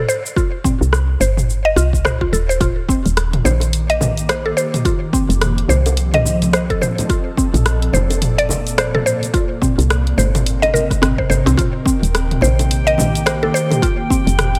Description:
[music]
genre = organic downtempo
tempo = 107 BPM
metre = 4/4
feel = swing 59% on 16ths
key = unclear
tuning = A4 = 440 Hz
[part]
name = mallet-like synth pluck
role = arpeggios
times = 0.0-14.6 s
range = C4 to Eb5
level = -22 LUFS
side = equal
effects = chorus, tape echo
[part]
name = woody FM bass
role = bass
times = 0.0-14.6 s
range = Eb1 to C2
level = -20 LUFS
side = equal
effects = none
[part]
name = deep house drum kit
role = drums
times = 0.1-14.6 s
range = hi-hat, rim click, shaker, toms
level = -23 LUFS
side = equal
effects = none
[part]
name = electronic kick drum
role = drums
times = 0.4-14.2 s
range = none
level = -22 LUFS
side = equal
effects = none
[part]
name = ethereal airy pad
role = sustained chords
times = 3.4-14.6 s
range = Bb2 to D6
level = -26 LUFS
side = equal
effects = ensemble chorus, built-in reverb, sidechain pumping
[part]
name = congas and bongos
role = percussion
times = 3.5-13.8 s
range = none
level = -27 LUFS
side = equal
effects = none
[part]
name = drifting glass-harmonics texture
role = texture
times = 12.0-14.6 s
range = G5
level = -30 LUFS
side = equal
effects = chorus, built-in reverb
[sound]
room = light reverb, digital ambience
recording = none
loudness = -16 LUFS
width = mono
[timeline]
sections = 0.0-11.6 A section; 11.6-14.6 B section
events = none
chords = 0.4 Cm; 2.6 Ebmaj7; 4.9 F7; 7.1 Bbmaj7; 9.3 Cm7; 11.6 Ebmaj7; 13.8 F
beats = | 0.37 0.93 1.49 2.05 | 2.61 3.17 3.73 4.29 | 4.85 5.41 5.97 6.54 | 7.09 7.66 8.22 8.78 | 9.34 9.90 10.46 11.02 | 11.58 12.14 12.70 13.26 | 13.82 14.38

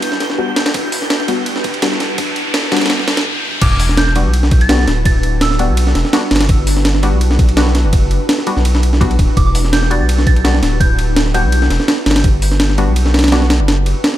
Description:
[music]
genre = drum and bass, jungle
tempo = 167 BPM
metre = 4/4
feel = swing 54% on 16ths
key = E minor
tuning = A4 = 440 Hz
[part]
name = soft synth bell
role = melody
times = 0.0-0.1, 3.6-5.6, 9.4-11.6 s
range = D6 to A6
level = -24 LUFS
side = right 2 dB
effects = chorus, phaser, dub echo
[part]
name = breakbeat sampler-style drum kit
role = drums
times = 0.0-14.2 s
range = crash cymbal, hi-hat, kick drum, ride cymbal, snare drum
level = -15 LUFS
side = equal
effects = high-pass filter on cymbals, small room ambience, high-pass filter on kick, high-pass filter on hats, high-pass filter on snare
[part]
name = riser and sub drop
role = sound effects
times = 0.0-5.1 s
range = none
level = -22 LUFS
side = equal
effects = none
[part]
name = twinkling granular texture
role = texture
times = 0.0-3.3 s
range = G6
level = -31 LUFS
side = right 2 dB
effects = none
[part]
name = filtered dub chord stab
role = stabs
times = 0.4-13.5 s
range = G3 to F#4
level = -22 LUFS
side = left 3 dB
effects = chorus, dub echo
[part]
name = saturated sub bass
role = bass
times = 3.6-13.9 s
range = D1 to B1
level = -14 LUFS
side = equal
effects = none
[sound]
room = digital ambience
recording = none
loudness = -11 LUFS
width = side -13 dB against mid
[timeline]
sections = 0.0-3.6 A section; 3.6-14.2 B section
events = build-up 0.0-3.6; riser 0.0-3.6; stop 3.3-3.6; drop 3.6-14.2; impact 3.6-5.1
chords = 0.0 Em9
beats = 0.03 0.39 | 0.74 1.10 1.46 1.82 | 2.18 2.54 2.90 3.26 | 3.62 3.98 4.34 4.70 | 5.06 5.42 5.78 6.13 | 6.49 6.85 7.21 7.57 | 7.93 8.29 8.65 9.01 | 9.37 9.73 10.09 10.45 | 10.80 11.16 11.52 11.88 | 12.24 12.60 12.96 13.32 | 13.68 14.04

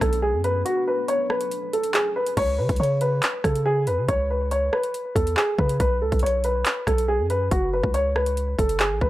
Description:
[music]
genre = hip hop, drill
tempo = 140 BPM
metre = 4/4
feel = half-time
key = unclear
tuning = A4 = 440 Hz
[part]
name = dark concert grand piano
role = melody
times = 0.0-9.1 s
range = F#4 to C#5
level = -23 LUFS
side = equal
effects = analog delay
[part]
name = deep dark ambient pad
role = sustained chords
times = 0.0-2.4 s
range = F#3 to A4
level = -36 LUFS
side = left 3 dB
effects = chorus, built-in reverb
[part]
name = long sustained 808-style bass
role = bass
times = 0.0-9.1 s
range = F#1 to C#3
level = -25 LUFS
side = equal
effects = none
[part]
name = drill drum kit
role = drums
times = 0.0-9.1 s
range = crash cymbal, handclaps, hi-hat, kick drum, rim click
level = -25 LUFS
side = equal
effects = none
[sound]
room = little or no reverb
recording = dry, gritty hardware recording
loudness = -20 LUFS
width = side -16 dB against mid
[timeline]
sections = 0.0-2.4 A section; 2.4-9.1 A section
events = kick muted 0.7-2.4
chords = 0.0 Bm7; 0.7 F#madd9; 2.4 C#7(no3); 5.8 B5; 7.5 F#5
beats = 0.23 | 0.66 1.08 1.51 1.94 | 2.37 2.80 3.23 3.66 | 4.08 4.51 4.94 5.37 | 5.80 6.23 6.66 7.08 | 7.51 7.94 8.37 8.80

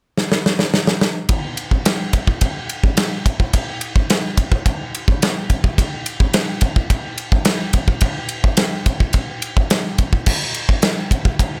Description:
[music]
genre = metal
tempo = 107 BPM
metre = 4/4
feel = straight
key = none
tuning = none
[part]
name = big rock drum kit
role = drums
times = 0.2-11.5 s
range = crash cymbal, kick drum, ride cymbal, snare drum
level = -18 LUFS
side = equal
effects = none
[sound]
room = little or no reverb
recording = none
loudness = -18 LUFS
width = mono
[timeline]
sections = 0.0-1.3 A section; 1.3-11.6 B section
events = drum fill 0.2-1.3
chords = none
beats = 0.17 0.73 | 1.29 1.85 2.41 2.97 | 3.54 4.10 4.66 5.22 | 5.78 6.34 6.90 7.46 | 8.02 8.58 9.14 9.70 | 10.26 10.82 11.38

